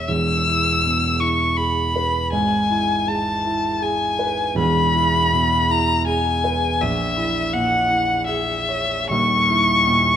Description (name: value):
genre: classical, romantic duo for violin and grand piano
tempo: 80 BPM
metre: 3/4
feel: rubato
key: unclear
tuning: A4 = 439 Hz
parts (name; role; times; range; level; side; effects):
- rich violin; melody; 0.0-10.2 s; E5 to E6; -19 LUFS; left 2 dB; none
- dark grand piano; accompaniment; 0.0-10.2 s; D#1 to C#5; -21 LUFS; right 2 dB; none
room: wet recital hall reverb, RT60 1.5 s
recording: none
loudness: -17 LUFS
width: side -9 dB against mid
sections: 0.0-10.2 A section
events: none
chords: 0.1 E; 2.3 E/G#; 4.6 E; 6.8 A#m7b5; 9.1 D#5